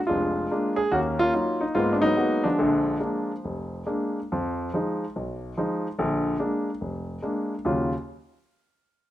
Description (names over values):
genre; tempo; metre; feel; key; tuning
solo jazz; 144 BPM; 4/4; swing 67% on 8ths, rubato; Eb minor; A4 = 440 Hz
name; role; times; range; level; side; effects
warm concert grand piano; solo; 0.1-7.9 s; F1 to Ab4; -23 LUFS; equal; none
room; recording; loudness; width
little or no reverb; recorded outdoors, with no room sound; -24 LUFS; side -13 dB against mid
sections
0.0-4.3 A section; 4.3-7.7 B section; 7.7-9.1 C section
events
none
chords
0.0 Bb7; 0.9 Ebm9; 1.7 Abm9; 2.6 Bb7; 4.3 Fm7b5; 6.0 Bb7; 7.7 Ebm9